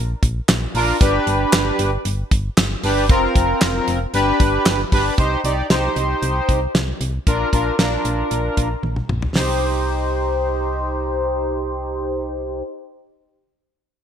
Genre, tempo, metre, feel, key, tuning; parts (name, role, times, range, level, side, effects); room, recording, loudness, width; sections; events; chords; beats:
synth-pop; 115 BPM; 4/4; straight; C minor; A4 = 439 Hz
solid FM bass; bass; 0.0-12.6 s; F1 to C2; -23 LUFS; equal
damped 70s drum kit; drums; 0.2-9.5 s; handclaps, hi-hat, kick drum, snare drum, toms; -19 LUFS; equal; gated reverb
analog synth brass; accompaniment; 0.7-12.6 s; C4 to D5; -20 LUFS; equal; chorus, low-pass filter
moderate plate reverb, RT60 1.3 s, studio ambience; bright 1980s-style digital production; -17 LUFS; side -8 dB against mid
0.0-5.2 A section; 5.2-9.4 B section; 9.4-13.5 C section
filter sweep on analog polysynth 5.2-9.4; drum fill 8.8-9.4
0.0 Bb; 1.0 G; 3.1 Fsus4; 4.1 G; 5.2 Cm; 7.3 Bb; 9.4 Cm
0.49 | 1.01 1.53 2.05 2.57 | 3.10 3.62 4.14 4.66 | 5.18 5.70 6.22 6.75 | 7.27 7.79 8.31 8.83 | 9.36 9.88 10.40 10.92 | 11.44 11.96 12.49